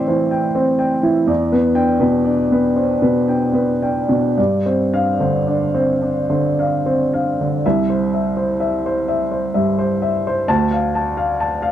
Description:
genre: neoclassical minimalist piano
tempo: 36-45 BPM (dotted quarters)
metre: 6/8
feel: rubato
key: C major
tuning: A4 = 440 Hz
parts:
  - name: warm upright piano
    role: solo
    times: 0.0-11.7 s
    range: C2 to A5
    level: -15 LUFS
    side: equal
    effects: none
room: small room ambience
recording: dry, close 1970s-style studio recording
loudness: -15 LUFS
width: side -11 dB against mid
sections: 0.0-7.6 A section; 7.6-11.7 B section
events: none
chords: 0.0 Am7; 1.3 Em7; 4.4 G7sus4; 7.6 C; 10.5 Dm

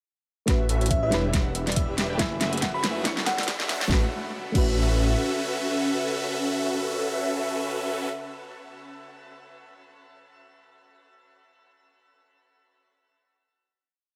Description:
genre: future bass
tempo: 140 BPM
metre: 4/4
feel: swing 56% on 16ths, half-time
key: A major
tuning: A4 = 443 Hz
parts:
  - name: soft round pluck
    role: accompaniment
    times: 0.5-8.8 s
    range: F#3 to C#6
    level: -36 LUFS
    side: equal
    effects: none
  - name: ethereal airy pad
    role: sustained chords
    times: 2.0-8.1 s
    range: C#4 to E6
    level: -40 LUFS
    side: equal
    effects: ensemble chorus, built-in reverb, tremolo, sidechain pumping
  - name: Celtic harp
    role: arpeggios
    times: 0.5-7.0 s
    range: F#4 to E5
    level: -42 LUFS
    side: equal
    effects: none
  - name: airy dreamy lead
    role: arpeggios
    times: 0.5-8.1 s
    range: E5 to A5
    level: -39 LUFS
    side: equal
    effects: chorus, sidechain pumping
  - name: supersaw chords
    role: riff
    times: 0.5-8.1 s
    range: A3 to A5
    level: -32 LUFS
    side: equal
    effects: phaser, sidechain pumping, low-pass filter, delay
  - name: detuned saw bass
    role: bass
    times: 0.5-5.2 s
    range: E1 to A1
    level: -30 LUFS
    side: equal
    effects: chorus, sidechain pumping
  - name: dubstep drum kit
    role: drums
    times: 0.5-4.7 s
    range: crash cymbal, hi-hat, snare drum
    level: -32 LUFS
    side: equal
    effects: none
  - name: electronic kick drum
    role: drums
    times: 0.5-4.7 s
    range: none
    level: -27 LUFS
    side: equal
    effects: none
  - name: riser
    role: sound effects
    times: 2.7-3.9 s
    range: none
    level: -44 LUFS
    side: equal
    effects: none
  - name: bell-like FM electric piano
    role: melody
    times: 0.9-3.6 s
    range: E5 to B5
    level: -37 LUFS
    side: equal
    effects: chorus, tremolo, cassette tape, sidechain pumping, low-pass filter, tape echo
room: light reverb, digital ambience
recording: high-pass filter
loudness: -26 LUFS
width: mono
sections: 0.5-3.9 build; 3.9-7.3 final chord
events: build-up 0.5-3.9; drum fill 0.5-3.9; filter sweep on supersaw synth 0.5-3.9; filter sweep on FM electric piano 0.5-3.9; filter sweep 0.5-3.9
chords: 0.5 A69; 1.1 Em7; 2.2 F#m11; 3.0 Dmaj9/F#; 3.9 A69

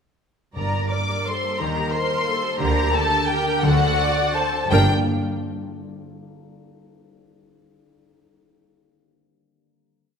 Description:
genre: classical, orchestral ballroom waltz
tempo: 158-192 BPM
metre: 3/4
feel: rubato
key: G minor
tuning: A4 = 440 Hz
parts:
  - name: rich studio violin section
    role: melody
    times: 0.6-4.9 s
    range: F#5 to D6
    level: -24 LUFS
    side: left 2 dB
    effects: none
  - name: rich studio violin section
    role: second line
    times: 0.6-4.9 s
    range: F#4 to G5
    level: -27 LUFS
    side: equal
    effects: none
  - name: rich studio viola section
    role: accompaniment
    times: 0.6-4.9 s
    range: D4 to D5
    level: -27 LUFS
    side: right 2 dB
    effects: none
  - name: concert harp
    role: arpeggios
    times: 0.6-4.9 s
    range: G2 to D5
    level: -28 LUFS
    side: left 4 dB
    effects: none
  - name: rich studio cello section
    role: bass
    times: 0.6-4.9 s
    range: G2 to Eb3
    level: -28 LUFS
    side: right 2 dB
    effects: none
  - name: warm studio double bass section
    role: bass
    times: 0.6-4.9 s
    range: G1 to Eb2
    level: -28 LUFS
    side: right 2 dB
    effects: none
  - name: timpani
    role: percussion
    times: 0.6-1.0, 3.6-4.9 s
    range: G2 to D3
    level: -27 LUFS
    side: right 1 dB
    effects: none
room: wet scoring stage reverb, RT60 1.7 s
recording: minimal, uncompressed stereo recording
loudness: -19 LUFS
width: side -6 dB against mid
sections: 0.6-4.7 A section; 4.7-5.8 final chord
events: none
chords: 0.6 Gm; 1.6 Eb; 2.6 Gm/D; 3.6 D7; 4.7 Gm

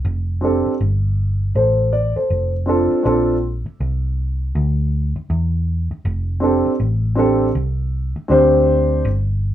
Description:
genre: hip hop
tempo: 80 BPM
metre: 4/4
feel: swing 61% on 16ths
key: F major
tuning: A4 = 440 Hz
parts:
  - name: hollow-body short-scale picked electric bass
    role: bass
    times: 0.0-9.5 s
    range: F1 to E2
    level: -19 LUFS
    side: equal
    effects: none
  - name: dark baby grand piano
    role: accompaniment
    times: 0.4-9.1 s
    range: C4 to D5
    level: -16 LUFS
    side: right 1 dB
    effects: none
room: moderate studio ambience, RT60 0.5 s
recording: band playing live in one room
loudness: -16 LUFS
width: side -12 dB against mid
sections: 0.0-9.5 A section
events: break 9.0-9.5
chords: 0.0 F69; 2.3 F; 3.0 Bbadd9; 6.0 F69

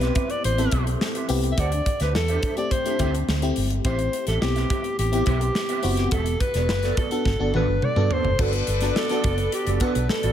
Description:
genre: polished 1980s jazz-funk pop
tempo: 106 BPM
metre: 4/4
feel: straight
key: A dorian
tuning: A4 = 440 Hz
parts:
  - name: warm alto saxophone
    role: melody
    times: 0.0-10.3 s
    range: G4 to E5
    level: -27 LUFS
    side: equal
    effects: analog delay
  - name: FM electric piano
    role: accompaniment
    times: 0.0-10.3 s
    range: A3 to A4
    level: -28 LUFS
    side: left 3 dB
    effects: lush chorus
  - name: mellow electric guitar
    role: riff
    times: 0.0-10.3 s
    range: B3 to F#5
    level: -32 LUFS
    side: right 6 dB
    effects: ensemble chorus
  - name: vintage muted fingered electric bass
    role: bass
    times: 0.0-10.3 s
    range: E1 to G2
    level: -24 LUFS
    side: equal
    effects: none
  - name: modern studio drum kit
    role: drums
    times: 0.0-10.3 s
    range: crash cymbal, hi-hat, kick drum, snare drum, toms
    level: -27 LUFS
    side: equal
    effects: none
  - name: warm horn section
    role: second line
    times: 8.4-10.3 s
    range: A4 to D5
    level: -33 LUFS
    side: right 2 dB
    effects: analog delay
room: moderate plate reverb, RT60 2.1 s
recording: dreamy mix soaked in reverb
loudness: -20 LUFS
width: side -10 dB against mid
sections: 0.0-8.4 A section; 8.4-10.3 B section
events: drum fill 7.3-8.4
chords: 0.0 Am9; 1.6 D9sus4; 3.9 Am9; 6.1 E9sus4; 7.3 Gmaj9

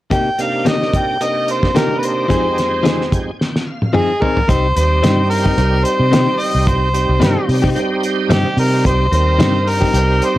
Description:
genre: straight-eighth soul blues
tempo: 110 BPM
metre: 4/4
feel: swing 55% on 16ths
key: C minor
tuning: A4 = 435 Hz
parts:
  - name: mellow harmonica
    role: melody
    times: 0.1-10.4 s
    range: G4 to G5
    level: -18 LUFS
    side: equal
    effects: overdrive
  - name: direct-recorded clean electric guitar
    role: stabs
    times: 0.1-10.0 s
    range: C3 to Ab4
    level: -20 LUFS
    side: left 3 dB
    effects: none
  - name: cloth-damped thuddy drum kit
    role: drums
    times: 0.1-10.4 s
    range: hi-hat, kick drum, snare drum, toms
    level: -19 LUFS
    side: equal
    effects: none
  - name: bright tonewheel organ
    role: accompaniment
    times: 0.4-10.4 s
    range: F2 to Ab5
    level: -21 LUFS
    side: right 3 dB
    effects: slow rotary speaker, overdrive, chorus vibrato
  - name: vintage muted fingered electric bass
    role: bass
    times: 4.5-10.4 s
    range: C2 to C3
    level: -16 LUFS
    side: equal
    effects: none
room: light reverb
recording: none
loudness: -13 LUFS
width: side -15 dB against mid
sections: 0.1-4.5 A section; 4.5-10.4 B section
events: tonewheel organ fill 2.8-4.5; drum fill 3.4-4.5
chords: 0.1 Cm7; 2.3 Fm7; 4.5 Cm

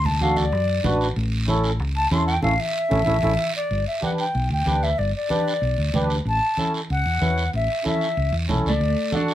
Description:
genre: latin, cumbia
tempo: 188 BPM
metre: 4/4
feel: straight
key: unclear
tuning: A4 = 441 Hz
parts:
  - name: silver concert flute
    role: melody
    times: 0.0-9.3 s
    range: D5 to C6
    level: -24 LUFS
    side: left 1 dB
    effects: none
  - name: hollow-body short-scale fingered electric bass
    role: bass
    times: 0.0-8.9 s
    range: G1 to F#2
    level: -23 LUFS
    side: equal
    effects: none
  - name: congas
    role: percussion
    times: 0.0-9.3 s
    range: none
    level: -28 LUFS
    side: left 1 dB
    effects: none
  - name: mellow accordion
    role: accompaniment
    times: 0.2-9.3 s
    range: C#4 to B4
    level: -25 LUFS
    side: right 2 dB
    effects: none
  - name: guiro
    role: percussion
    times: 0.2-9.3 s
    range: none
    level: -34 LUFS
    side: right 4 dB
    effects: none
  - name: clean electric guitar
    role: second line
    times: 8.7-9.3 s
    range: A3 to D4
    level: -25 LUFS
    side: right 3 dB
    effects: tremolo
room: moderate studio ambience, RT60 0.5 s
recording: none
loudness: -20 LUFS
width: side -12 dB against mid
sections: 0.0-3.7 A section; 3.7-9.3 B section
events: flute solo 0.0-3.7; band accent 2.4-3.7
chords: 0.0 D; 1.2 A; 3.7 G; 6.3 A; 8.8 D

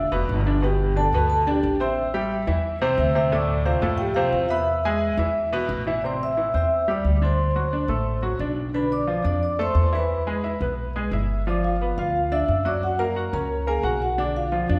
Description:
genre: latin, salsa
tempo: 177 BPM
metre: 4/4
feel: straight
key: A minor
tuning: A4 = 440 Hz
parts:
  - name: vibraphone with medium mallets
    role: melody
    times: 0.0-14.8 s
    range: F4 to E6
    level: -27 LUFS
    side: equal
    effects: none
  - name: bright baby grand piano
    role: accompaniment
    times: 0.0-14.8 s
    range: A2 to C6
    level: -28 LUFS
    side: equal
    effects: none
  - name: upright bass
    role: bass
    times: 0.0-14.8 s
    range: F1 to F#2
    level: -28 LUFS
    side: equal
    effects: none
room: wet recital hall reverb, RT60 1.4 s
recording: recorded in a church or concert hall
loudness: -23 LUFS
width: mono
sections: 0.0-6.0 A section; 6.0-14.8 B section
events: none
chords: 0.0 E5; 0.6 G; 2.0 Am7; 3.3 Dm7; 4.7 E; 6.0 Am7; 7.4 D7; 8.7 Bm7b5; 10.1 E; 11.5 G7; 12.8 F#; 14.2 Bdim

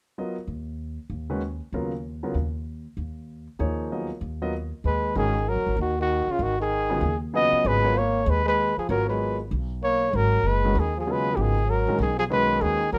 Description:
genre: jazz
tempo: 193 BPM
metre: 4/4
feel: swing 62% on 8ths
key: G# dorian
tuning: A4 = 440 Hz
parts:
  - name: clear concert grand piano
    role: accompaniment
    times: 0.2-12.8 s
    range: C#3 to D#5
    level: -32 LUFS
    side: equal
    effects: none
  - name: upright bass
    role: bass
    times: 0.5-13.0 s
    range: F#1 to D#2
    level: -30 LUFS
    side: equal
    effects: none
  - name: breathy trumpet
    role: melody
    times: 4.9-13.0 s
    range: E#4 to D#5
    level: -26 LUFS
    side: equal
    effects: none
  - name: bright trombone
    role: second line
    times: 4.9-13.0 s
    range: C#3 to B3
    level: -32 LUFS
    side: equal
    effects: none
room: light reverb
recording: none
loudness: -25 LUFS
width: mono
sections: 0.2-5.2 A section; 5.2-13.0 B section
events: none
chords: 0.2 G#m9 (rootless); 5.2 G#m9

